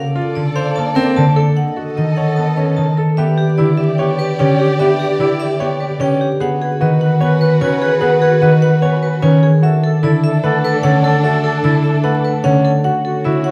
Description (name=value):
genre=classical, minimalist pattern music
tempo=149 BPM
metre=4/4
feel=straight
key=E dorian from 3.2 s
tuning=A4 = 440 Hz
part: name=vibraphone with hard mallets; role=melody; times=0.0-13.5 s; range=G4 to A5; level=-24 LUFS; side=equal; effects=none
part: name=warm clarinet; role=second line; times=0.0-13.5 s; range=F#4 to B4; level=-23 LUFS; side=equal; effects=none
part: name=concert harp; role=accompaniment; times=0.0-13.5 s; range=D3 to B3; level=-17 LUFS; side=equal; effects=none
part: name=warm studio string section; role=sustained chords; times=0.0-13.5 s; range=C#4 to D#5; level=-26 LUFS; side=equal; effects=none
part: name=bright grand piano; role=arpeggios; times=0.2-13.5 s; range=C4 to C#5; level=-23 LUFS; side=equal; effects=none
room=wet recital hall reverb, RT60 1.4 s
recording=vinyl crackle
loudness=-15 LUFS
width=mono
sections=0.0-3.2 A section; 3.2-13.5 B section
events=none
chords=0.0 Bbmaj7; 1.6 B7; 3.2 Em7; 6.4 G#m7; 9.6 Bm9; 12.8 Dmaj7